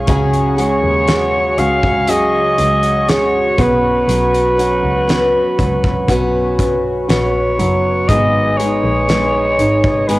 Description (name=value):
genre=pop ballad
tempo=60 BPM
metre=4/4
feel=straight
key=unclear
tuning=A4 = 437 Hz
part: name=dark grand piano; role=accompaniment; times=0.0-10.2 s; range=C#3 to G#4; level=-20 LUFS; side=right 2 dB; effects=cassette tape, plate reverb
part: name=chorused pulse-width pad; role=sustained chords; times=0.0-10.2 s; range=F#4 to D#6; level=-22 LUFS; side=right 1 dB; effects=cassette tape, plate reverb
part: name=picked steel-string acoustic guitar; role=arpeggios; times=0.0-10.2 s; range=G#2 to B4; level=-20 LUFS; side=left 2 dB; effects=cassette tape, plate reverb, tape echo
part: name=clear double bass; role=bass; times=0.0-10.2 s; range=F#1 to D#2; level=-21 LUFS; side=equal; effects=none
part: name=loose indie drum kit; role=drums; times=0.1-10.2 s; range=hi-hat, kick drum, snare drum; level=-20 LUFS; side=equal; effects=cassette tape
part: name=raspy alto saxophone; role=melody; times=0.6-10.2 s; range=B4 to E#5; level=-16 LUFS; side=equal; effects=cassette tape, plate reverb
room=wet booth ambience, RT60 0.2 s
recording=home recording on cassette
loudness=-12 LUFS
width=side -18 dB against mid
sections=0.0-10.2 A section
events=none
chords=0.1 F#sus2/C#; 3.6 Bsus2; 8.1 G#m